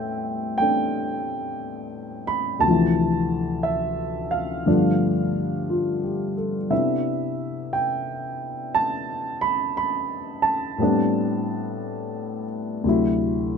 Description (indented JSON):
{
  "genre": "solo jazz",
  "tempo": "59 BPM",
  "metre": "4/4",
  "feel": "swing 66% on 8ths",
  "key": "unclear",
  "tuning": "A4 = 440 Hz",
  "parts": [
    { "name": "dark upright piano", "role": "solo", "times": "0.0-13.6 s", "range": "D2 to B5", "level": "-22 LUFS", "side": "equal", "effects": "none" }
  ],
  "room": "light reverb",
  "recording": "minimal, uncompressed stereo recording",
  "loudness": "-22 LUFS",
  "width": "side -6 dB against mid",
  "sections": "0.0-13.6 A section",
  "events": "none",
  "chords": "0.0 Am9; 2.6 Dm9; 4.7 G9; 6.7 Cmaj9; 10.8 Am11; 12.8 D9",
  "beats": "0.59 1.61 | 2.63 3.65 4.67 5.69 | 6.71 7.74 8.76 9.78 | 10.80 11.82 12.84"
}